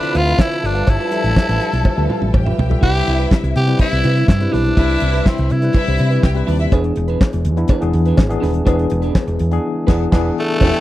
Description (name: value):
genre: disco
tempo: 123 BPM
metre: 4/4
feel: straight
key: unclear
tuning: A4 = 442 Hz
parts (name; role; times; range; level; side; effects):
- raspy tenor saxophone; melody; 0.0-6.5, 10.4-10.8 s; A3 to G4; -21 LUFS; equal; none
- clear symphonic string section; second line; 0.0-6.7, 10.6-10.7 s; D4 to B5; -26 LUFS; left 4 dB; none
- electric guitar at the edge of break-up; accompaniment; 0.0-10.8 s; D4 to F5; -25 LUFS; right 8 dB; tremolo
- tine electric piano; accompaniment; 0.0-10.8 s; C3 to E5; -22 LUFS; left 4 dB; overdrive, fast stereo tremolo
- dark French horn section; sustained chords; 0.0-10.8 s; C3 to E5; -28 LUFS; equal; none
- damped 70s drum kit; drums; 0.0-10.8 s; crash cymbal, handclaps, hi-hat, kick drum, snare drum, toms; -14 LUFS; equal; none
- hollow-body short-scale fingered electric bass; bass; 0.1-10.7 s; D#1 to C3; -18 LUFS; equal; none
- cowbell; percussion; 0.4-2.5, 6.7-10.7 s; none; -30 LUFS; left 2 dB; none
room: small room ambience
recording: dry, close 1970s-style studio recording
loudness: -14 LUFS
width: side -15 dB against mid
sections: 0.0-2.8 A section; 2.8-10.6 B section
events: drum fill 1.9-2.8; band accent 9.6-10.6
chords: 0.0 Dm9; 0.6 G13; 2.8 Cmaj7; 6.7 E7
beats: 0.39 | 0.88 1.36 1.85 2.34 | 2.83 3.31 3.80 4.29 | 4.78 5.26 5.75 6.24 | 6.72 7.21 7.70 8.18 | 8.67 9.15 9.64 10.13 | 10.61